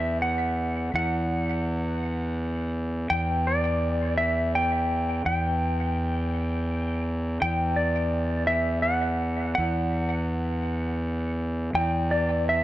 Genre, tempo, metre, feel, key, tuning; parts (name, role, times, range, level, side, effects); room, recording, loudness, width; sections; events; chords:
post-rock; 56 BPM (dotted quarters); 6/8; straight; A4 = 440 Hz
clean lap steel guitar; melody; 0.0-12.6 s; D5 to G5; -27 LUFS; equal; digital delay
fuzz fingered electric bass; bass; 0.0-12.6 s; E2; -26 LUFS; equal; overdrive
light reverb, digital ambience; dark, warm production; -24 LUFS; side -15 dB against mid
0.0-12.6 A section
0.0 C/E (rootless)